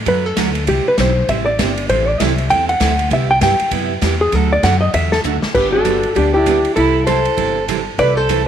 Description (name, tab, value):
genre	country, western swing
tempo	197 BPM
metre	4/4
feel	swing 60% on 8ths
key	unclear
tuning	A4 = 440 Hz
part	upright bass	bass	0.0-8.5 s	G1 to G2	-19 LUFS	left 1 dB	none
part	hollow-body jazz guitar	melody	0.1-8.5 s	D4 to G5	-16 LUFS	left 1 dB	none
part	picked steel-string acoustic guitar	accompaniment	0.1-8.4 s	C3 to B4	-22 LUFS	right 12 dB	none
part	swinging big-band drum kit	drums	0.1-8.4 s	crash cymbal, hi-hat, kick drum, ride cymbal, snare drum	-23 LUFS	left 1 dB	none
part	rich fiddle	second line	5.6-8.5 s	D4 to B4	-22 LUFS	right 12 dB	none
room	light reverb, small room ambience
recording	1960s-style stereo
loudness	-13 LUFS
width	side -9 dB against mid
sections	0.0-5.5 A section; 5.5-8.5 B section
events	hollow-body jazz guitar solo 0.0-5.5; drum fill 5.2-5.5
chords	0.0 D; 0.7 C; 1.9 Am7; 3.1 Cmaj7; 4.3 D; 5.5 G; 6.8 C6